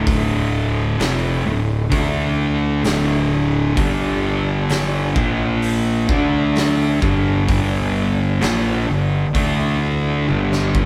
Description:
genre	stoner and doom metal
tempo	65 BPM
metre	4/4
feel	straight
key	D minor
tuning	A4 = 435 Hz
part	percussive tonewheel organ	sustained chords	0.0-10.9 s	D3 to E5	-35 LUFS	equal	none
part	thick fuzz guitar	riff	0.0-10.9 s	D2 to D4	-22 LUFS	equal	distortion
part	thick fuzz guitar	riff	0.0-10.9 s	D2 to D4	-25 LUFS	equal	distortion
part	fuzz fingered electric bass	bass	0.0-10.9 s	D1 to D2	-27 LUFS	equal	overdrive
part	oversized low-tuned drum kit	drums	0.1-10.9 s	hi-hat, kick drum, snare drum, toms	-26 LUFS	equal	none
room	light reverb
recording	band playing live in one room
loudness	-19 LUFS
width	mono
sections	0.0-10.9 A section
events	drum fill 10.3-10.9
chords	0.0 Dm; 3.8 G5; 5.2 Bb5; 6.1 D5; 7.0 G5; 9.3 D5; 10.3 G5

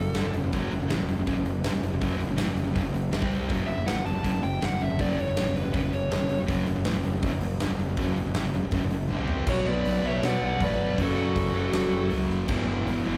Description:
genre	heavy metal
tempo	160 BPM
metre	4/4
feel	straight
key	F# phrygian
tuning	A4 = 439 Hz
part	high-gain lead guitar	melody	0.0-0.3, 3.7-6.4, 9.5-12.1 s	A4 to A5	-36 LUFS	equal	distortion
part	sludgy distorted guitar	riff	0.0-13.2 s	E2 to B#3	-36 LUFS	equal	overdrive
part	sludgy distorted guitar	riff	0.0-13.2 s	E2 to B#3	-32 LUFS	equal	overdrive
part	fuzz fingered electric bass	bass	0.0-13.2 s	F#1 to B2	-33 LUFS	equal	overdrive
part	big rock drum kit	drums	0.1-13.0 s	crash cymbal, hi-hat, kick drum, snare drum, toms	-34 LUFS	equal	none
part	high-gain lead guitar	second line	9.5-12.1 s	F#4 to D5	-34 LUFS	equal	distortion
part	pipe organ, principal	sustained chords	9.5-13.2 s	none	barely audible	none	none
room	wet cathedral reverb, RT60 6.8 s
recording	rough rehearsal-room recording, tube saturation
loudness	-27 LUFS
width	mono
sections	0.0-9.5 A section; 9.5-13.2 B section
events	drum fill 9.1-9.5; half time 9.5-13.2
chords	0.0 F#m; 9.5 Bm; 11.0 F#m; 12.5 Em/G

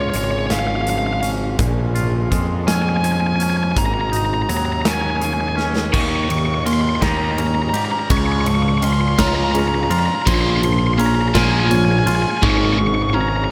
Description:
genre	post-rock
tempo	55 BPM (dotted quarters)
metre	6/8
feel	straight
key	Bb minor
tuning	A4 = 442 Hz
part	bluesy overdriven lead guitar	melody	0.0-13.5 s	Db5 to Db6	-24 LUFS	equal	distortion, digital delay
part	airy breathy pad	sustained chords	0.0-13.5 s	Db3 to F5	-33 LUFS	equal	none
part	twangy electric guitar	arpeggios	0.0-13.5 s	Ab2 to G4	-29 LUFS	equal	digital delay
part	fuzz picked electric bass	bass	0.0-13.5 s	Ab1 to Ab2	-23 LUFS	equal	overdrive
part	huge arena drum kit	drums	0.1-12.6 s	crash cymbal, hi-hat, kick drum, ride cymbal, snare drum	-25 LUFS	equal	none
part	cranked stack guitar	riff	5.9-13.5 s	Ab2 to Eb4	-22 LUFS	equal	overdrive, phaser
room	light reverb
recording	none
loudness	-18 LUFS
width	mono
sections	0.0-5.9 A section; 5.9-13.5 B section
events	drum fill 5.6-5.9; build-up 5.9-13.5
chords	0.0 Db; 1.6 Bbm7; 3.8 Ab7sus4; 5.9 Eb7; 8.1 Db; 10.3 Bbm7; 12.4 Ab7sus4

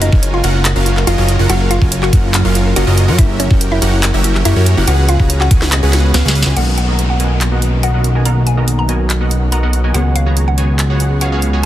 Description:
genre	future bass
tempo	142 BPM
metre	4/4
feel	half-time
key	F# major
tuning	A4 = 439 Hz
part	mallet-like synth pluck	melody	0.0-11.7 s	B3 to A#5	-22 LUFS	equal	chorus, phaser, sidechain pumping, dub echo
part	ethereal airy pad	sustained chords	0.0-11.7 s	C#3 to F#4	-26 LUFS	right 1 dB	none
part	thumb-piano-like synth pluck	arpeggios	0.0-6.5 s	E4 to G#5	-26 LUFS	left 3 dB	chorus, sidechain pumping, digital delay
part	supersaw stab	riff	0.0-11.7 s	B3 to A#5	-20 LUFS	right 1 dB	sidechain pumping, low-pass filter
part	fat analog bass	bass	0.0-11.7 s	F#1 to F#2	-13 LUFS	equal	sidechain pumping
part	trap drum kit	drums	0.0-11.7 s	crash cymbal, handclaps, hi-hat, snare drum	-19 LUFS	equal	none
part	electronic kick drum	drums	0.1-5.6 s	none	-11 LUFS	equal	none
part	glassy digital keys	accompaniment	6.5-11.7 s	D#3 to C#4	-25 LUFS	left 3 dB	chorus, sidechain pumping, digital delay
part	downlifter	sound effects	6.6-9.9 s	none	-28 LUFS	equal	none
room	little or no reverb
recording	dense, heavily limited modern master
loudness	-11 LUFS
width	side -13 dB against mid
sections	0.0-6.6 A section; 6.6-11.7 B section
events	drop 0.0-6.6; kick drops out 6.1-6.6; drum fill 6.1-6.6; band accent 6.4; filter sweep on supersaw synth 6.6-11.7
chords	0.0 F#maj7; 3.2 F#7b9; 4.9 C#7sus4; 6.6 Bmaj7; 9.9 C#7sus4

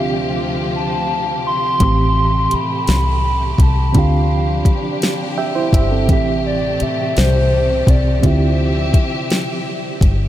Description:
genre	slow six-eight R&B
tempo	56 BPM (dotted quarters)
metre	6/8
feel	straight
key	unclear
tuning	A4 = 439 Hz
part	hollow clarinet-like synth lead	melody	0.0-9.7 s	C5 to C6	-21 LUFS	equal	chorus, ping-pong delay
part	reed electric piano	accompaniment	0.0-10.3 s	A2 to G5	-22 LUFS	right 4 dB	tremolo
part	warm studio string section	sustained chords	0.0-10.3 s	D2 to E5	-24 LUFS	left 2 dB	none
part	deep dub fingered electric bass	bass	1.8-10.3 s	G1 to D2	-17 LUFS	left 1 dB	none
part	smooth R&B drum kit	drums	1.8-10.2 s	hi-hat, kick drum, snare drum	-17 LUFS	left 1 dB	none
room	moderate huge ambient reverb, RT60 7.5 s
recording	dreamy mix soaked in reverb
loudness	-14 LUFS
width	side -12 dB against mid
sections	0.0-10.3 A section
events	reed electric piano fill 5.0-6.1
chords	0.0 Dm7; 1.8 Am7; 3.9 Dm7; 6.1 Am7; 8.2 Dm11

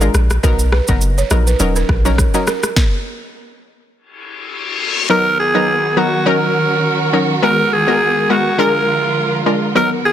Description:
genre	afrobeats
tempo	103 BPM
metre	4/4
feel	swing 55% on 16ths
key	Eb minor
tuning	A4 = 440 Hz
part	analog pluck	accompaniment	0.0-10.1 s	F#3 to Bb4	-18 LUFS	left 2 dB	chorus
part	balafon	riff	0.0-2.6 s	A#4 to D#5	-24 LUFS	right 7 dB	ping-pong delay
part	punchy sub bass	bass	0.0-2.3 s	Eb1 to B1	-15 LUFS	equal	none
part	afro-pop drum kit	drums	0.0-2.9 s	kick drum, rim click, shaker, snare drum	-17 LUFS	equal	soft clipping on snare
part	reverse cymbal	sound effects	4.2-5.1 s	none	-20 LUFS	left 6 dB	none
part	breathy alto saxophone	melody	5.1-10.1 s	F#4 to A#4	-15 LUFS	equal	ping-pong delay
part	warm studio string section	sustained chords	5.1-10.1 s	D3 to A#4	-20 LUFS	right 2 dB	none
room	light reverb, small room ambience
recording	dense, heavily limited modern master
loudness	-12 LUFS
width	side -10 dB against mid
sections	0.0-5.1 A section; 5.1-10.1 B section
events	stop 2.8-5.1; reverse cymbal 4.2-5.1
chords	0.4 Bmaj7; 1.6 Ebm7; 2.8 N.C.; 5.1 Bmaj7; 6.3 Ebm7; 7.4 Abm9; 8.6 Bb7

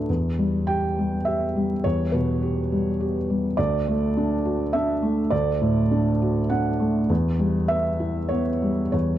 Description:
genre	neoclassical minimalist piano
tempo	102 BPM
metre	3/4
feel	rubato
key	unclear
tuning	A4 = 440 Hz
part	felt-muted upright piano	solo	0.0-9.2 s	D2 to G5	-21 LUFS	equal	none
room	light reverb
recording	dark, warm production, vinyl crackle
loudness	-21 LUFS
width	side -12 dB against mid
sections	0.0-9.2 A section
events	none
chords	0.1 Em; 3.6 D; 7.1 Em

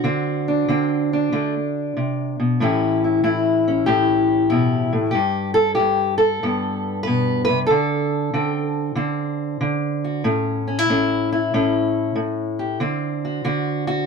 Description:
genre	acoustic country blues, solo or duo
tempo	94 BPM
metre	4/4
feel	swing 67% on 8ths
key	D mixolydian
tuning	A4 = 439 Hz
part	fingerpicked steel-string acoustic guitar	solo	0.0-14.1 s	G2 to B4	-18 LUFS	left 1 dB	none
room	light reverb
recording	close, detailed microphones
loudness	-18 LUFS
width	side -5 dB against mid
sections	0.0-12.8 A section; 12.8-14.1 A section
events	none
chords	0.0 D7; 2.6 A7; 5.1 G; 7.7 D7(no3); 10.2 A; 12.8 D7

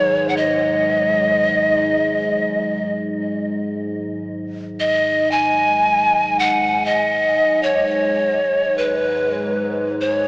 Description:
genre	world meditative, free-time meditation music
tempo	free time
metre	none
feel	none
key	G# minor pentatonic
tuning	A4 = 440 Hz
part	breathy reedy pan flute	melody	0.0-10.3 s	B4 to G#5	-16 LUFS	equal	tape echo
part	analog drone	drone	0.0-10.3 s	G#2	-25 LUFS	equal	chorus
part	bronze singing bowl	texture	0.0-6.0 s	F#3	-33 LUFS	equal	none
room	wet huge ambient reverb, RT60 6.5 s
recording	worn, warbling old tape, cassette tape, warbly pitch drift, small speaker sound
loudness	-16 LUFS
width	side -26 dB against mid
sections	0.0-10.3 A section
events	none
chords	none

